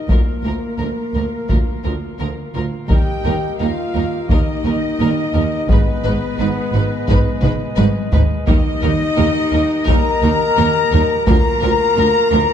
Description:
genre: cinematic, epic orchestral film score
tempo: 86 BPM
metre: 4/4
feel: straight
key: Eb major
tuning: A4 = 439 Hz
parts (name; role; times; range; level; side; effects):
- flute section; second line; 0.0-12.5 s; Bb4 to Bb5; -29 LUFS; left 4 dB; none
- warm symphonic violin section; second line; 0.0-12.5 s; Bb4 to Bb5; -28 LUFS; left 3 dB; none
- mellow French horn section; sustained chords; 0.0-12.5 s; Bb3 to Bb4; -21 LUFS; left 3 dB; none
- warm woodwind section; sustained chords; 0.0-12.5 s; Ab3 to F5; -29 LUFS; equal; none
- warm trumpet section; stabs; 0.0-12.5 s; Bb4 to Bb5; -26 LUFS; left 4 dB; none
- clear symphonic violin section; melody; 0.1-12.4 s; Bb4 to Cb5; -29 LUFS; left 4 dB; none
- rich symphonic viola section; accompaniment; 0.1-12.4 s; F3 to F4; -29 LUFS; right 2 dB; none
- rich studio cello section; bass; 0.1-12.4 s; D2 to Ab2; -23 LUFS; right 3 dB; none
- rich symphonic double bass section; bass; 0.1-12.4 s; Ab1 to Eb2; -21 LUFS; right 3 dB; none
- solo taiko drums; drums; 0.1-11.9 s; none; -17 LUFS; equal; none
room: moderate scoring stage reverb, RT60 1.8 s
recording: dark, warm production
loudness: -14 LUFS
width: side -9 dB against mid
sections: 0.0-12.5 A section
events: drum fill 7.4-8.5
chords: 0.1 Bb/D; 2.9 Eb; 5.7 Abm; 8.5 Eb; 11.3 Bb/D

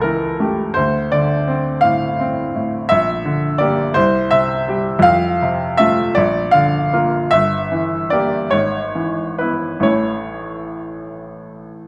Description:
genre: classical, romantic character piece for solo piano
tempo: 44-57 BPM (dotted quarters)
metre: 6/8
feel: rubato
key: unclear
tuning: A4 = 440 Hz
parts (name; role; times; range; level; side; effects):
- bright baby grand piano; solo; 0.0-11.9 s; G1 to F5; -18 LUFS; equal; none
room: wet recital hall reverb, RT60 1.3 s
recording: none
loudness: -17 LUFS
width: mono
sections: 0.0-11.9 A section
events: none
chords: 0.0 A7/C#; 0.8 Dm7; 2.9 Bb6; 4.0 C; 5.1 F; 6.2 Bb; 7.3 Edim/G; 8.5 E/G#; 9.8 A

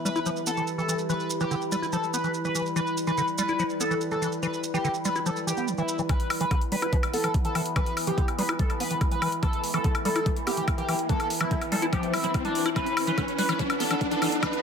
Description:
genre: psychedelic trance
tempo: 144 BPM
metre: 4/4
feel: straight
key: E minor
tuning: A4 = 439 Hz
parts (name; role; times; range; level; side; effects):
- overtone-sweeping drone; sustained chords; 0.0-14.6 s; E3 to E4; -32 LUFS; left 1 dB; chorus, built-in reverb, sidechain pumping
- airy breathy pad; texture; 0.0-14.6 s; E4 to B5; -36 LUFS; equal; chorus, sidechain pumping
- overdriven synth lead; melody; 0.1-14.6 s; D4 to B4; -30 LUFS; left 1 dB; distortion, chorus, phaser, sidechain pumping, ping-pong delay
- liquid acid bass; riff; 0.1-14.5 s; D3 to E4; -31 LUFS; equal; chorus, auto-pan, sidechain pumping, ping-pong delay
- maracas; percussion; 0.1-6.1 s; none; -34 LUFS; right 5 dB; none
- electronic hi-hat and woodblock; drums; 6.1-14.6 s; none; -32 LUFS; left 2 dB; overdrive, low-pass filter on hats, low-pass filter on perc
- electronic kick drum; drums; 6.1-14.5 s; none; -27 LUFS; equal; overdrive
- riser; sound effects; 7.8-14.6 s; none; -33 LUFS; equal; none
room: moderate plate reverb, RT60 1.1 s, digital ambience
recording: high-pass filter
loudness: -24 LUFS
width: side -6 dB against mid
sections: 0.0-6.1 A section; 6.1-14.6 B section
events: filter sweep on acid bass 0.0-6.1, 6.1-14.6; build-up 6.1-14.6; filter sweep 6.1-14.6; riser 7.8-14.6; drum fill 12.8-14.6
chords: 0.0 E5

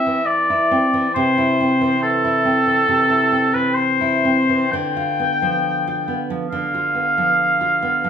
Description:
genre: romantic duo for oboe and classical guitar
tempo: 69 BPM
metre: 4/4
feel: rubato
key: A minor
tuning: A4 = 440 Hz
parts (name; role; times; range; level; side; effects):
- warm oboe; melody; 0.0-8.1 s; A4 to G5; -17 LUFS; left 1 dB; none
- nylon-string guitar; accompaniment; 0.0-8.1 s; C3 to F4; -20 LUFS; right 1 dB; none
room: moderate large studio reverb, RT60 1.1 s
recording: band playing live in one room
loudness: -15 LUFS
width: side -8 dB against mid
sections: 0.0-8.1 A section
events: none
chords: 0.0 Am (rootless); 1.1 Am/C; 4.7 Bdim/D

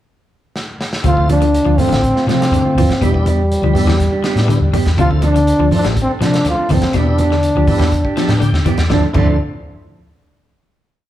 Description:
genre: afrobeat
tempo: 122 BPM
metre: 4/4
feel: straight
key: D dorian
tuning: A4 = 440 Hz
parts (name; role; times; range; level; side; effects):
- crunchy breakbeat drum kit; drums; 0.6-9.3 s; crash cymbal, hi-hat, kick drum, snare drum; -23 LUFS; equal; none
- tonewheel organ; accompaniment; 1.0-9.4 s; F3 to A5; -26 LUFS; left 1 dB; slow rotary speaker, overdrive, chorus vibrato
- electric guitar at the edge of break-up; arpeggios; 1.0-9.3 s; B2 to G3; -22 LUFS; left 6 dB; none
- mellow electric guitar; stabs; 1.0-9.4 s; F3 to A4; -23 LUFS; right 7 dB; none
- hollow-body short-scale fingered electric bass; bass; 1.0-9.4 s; A1 to C3; -16 LUFS; equal; none
- congas; percussion; 1.0-9.3 s; none; -21 LUFS; right 2 dB; none
- breathy trombone; melody; 1.1-9.4 s; G3 to F4; -17 LUFS; equal; none
room: moderate large studio reverb, RT60 1.3 s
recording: band playing live in one room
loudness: -12 LUFS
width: side -13 dB against mid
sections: 0.0-1.0 pickup bar; 1.0-8.9 groove; 8.9-10.9 final chord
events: drum fill 0.5-1.0; tonewheel organ fill 7.9-8.9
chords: 0.0 N.C.; 1.0 Dm7; 3.0 Em7; 5.0 Dm7; 6.9 Em7; 8.9 Dm7

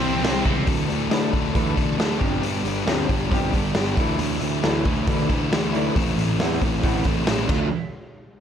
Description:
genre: quiet-loud alternative rock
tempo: 136 BPM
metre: 4/4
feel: straight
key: unclear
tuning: A4 = 441 Hz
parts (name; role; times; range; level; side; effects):
- heavy high-gain guitar; riff; 0.0-0.7 s; C3 to C4; -28 LUFS; equal; distortion
- sludgy distorted guitar; riff; 0.0-7.7 s; G2 to A4; -27 LUFS; left 13 dB; overdrive
- thick fuzz guitar; riff; 0.0-7.7 s; G2 to E4; -28 LUFS; right 13 dB; distortion
- fuzz picked electric bass; bass; 0.0-7.7 s; G1 to E2; -27 LUFS; equal; overdrive
- raw garage drum kit; drums; 0.2-7.6 s; crash cymbal, hi-hat, kick drum, snare drum; -24 LUFS; equal; none
- electric guitar through a small old amp; arpeggios; 0.7-7.7 s; D3 to G4; -27 LUFS; left 1 dB; lush chorus
room: light reverb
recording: none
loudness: -20 LUFS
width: side -8 dB against mid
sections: 0.7-7.7 A section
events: none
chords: 0.0 C; 0.7 Dsus2; 2.2 G7sus4; 4.0 Dsus2; 6.0 Amadd9; 7.5 Dm; 7.7 N.C.

